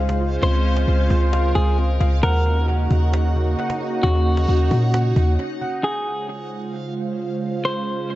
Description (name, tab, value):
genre	hip hop, atmospheric cloud-rap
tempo	133 BPM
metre	4/4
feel	half-time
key	Db major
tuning	A4 = 440 Hz
part	sweeping resonant pad	sustained chords	0.0-8.2 s	Db3 to C5	-26 LUFS	right 3 dB	chorus
part	muted felt-like synth keys	arpeggios	0.0-5.8 s	C4 to Gb5	-28 LUFS	left 2 dB	chorus, low-pass filter, tape echo
part	warm 808-style bass	bass	0.0-5.4 s	Db2 to Bb2	-18 LUFS	equal	none
part	backwards swelling texture	texture	0.0-8.2 s	Db4 to Gb5	-34 LUFS	equal	built-in reverb
part	cajon	drums	0.1-5.3 s	none	-30 LUFS	equal	tape echo
part	clean electric guitar	melody	0.4-8.2 s	Gb4 to C5	-26 LUFS	left 1 dB	low-pass filter, tape echo
room	light reverb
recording	echo-heavy mix, nothing above 7.8 kHz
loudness	-18 LUFS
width	side -15 dB against mid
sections	0.0-5.8 A section; 5.8-8.2 B section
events	break 5.4-5.8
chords	0.0 Dbmaj7; 2.2 Ebm7; 5.8 Dbmaj7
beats	| 0.42 0.88 1.33 1.78 | 2.23 2.68 3.13 3.58 | 4.03 4.49 4.94 5.39 | 5.84 6.29 6.74 7.19 | 7.64 8.09